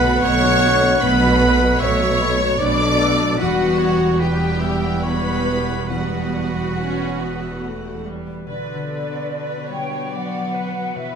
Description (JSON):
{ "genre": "cinematic, emotional film score for orchestra", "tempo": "68-77 BPM", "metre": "3/4", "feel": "rubato", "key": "unclear", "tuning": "A4 = 440 Hz", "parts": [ { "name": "warm symphonic violin section", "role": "melody", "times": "0.0-11.2 s", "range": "F#4 to D6", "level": "-27 LUFS", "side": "left 2 dB", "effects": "none" }, { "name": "clear oboe", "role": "second line", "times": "0.0-8.0 s", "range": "A4 to F#5", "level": "-25 LUFS", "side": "right 2 dB", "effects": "none" }, { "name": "hollow flute section", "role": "second line", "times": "0.0-11.2 s", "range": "F#4 to G5", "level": "-25 LUFS", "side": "equal", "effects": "none" }, { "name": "rich studio violin section", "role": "second line", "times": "0.0-11.2 s", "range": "B3 to D5", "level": "-27 LUFS", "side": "left 1 dB", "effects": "none" }, { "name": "rich symphonic viola section", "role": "accompaniment", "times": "0.0-11.2 s", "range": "F#3 to D5", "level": "-26 LUFS", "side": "right 3 dB", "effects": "none" }, { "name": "mellow French horn section", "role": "sustained chords", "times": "0.0-8.1 s", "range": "G3 to C#5", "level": "-24 LUFS", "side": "left 3 dB", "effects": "none" }, { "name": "concert harp", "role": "arpeggios", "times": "0.0-11.2 s", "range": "B2 to B5", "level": "-28 LUFS", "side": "left 3 dB", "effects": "none" }, { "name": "clear symphonic double bass section", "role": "bass", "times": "0.0-8.2 s", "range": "E1 to B1", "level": "-24 LUFS", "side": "right 3 dB", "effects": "none" }, { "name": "rich symphonic cello section", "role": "bass", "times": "0.0-11.2 s", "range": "E2 to G3", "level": "-26 LUFS", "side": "right 2 dB", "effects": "none" } ], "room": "moderate recital hall reverb, RT60 1.7 s", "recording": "none", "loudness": "-16 LUFS", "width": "side -7 dB against mid", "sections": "0.0-8.5 A section; 8.5-11.2 B section", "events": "none", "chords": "0.0 Bm7; 3.4 Emadd9; 8.5 Bm" }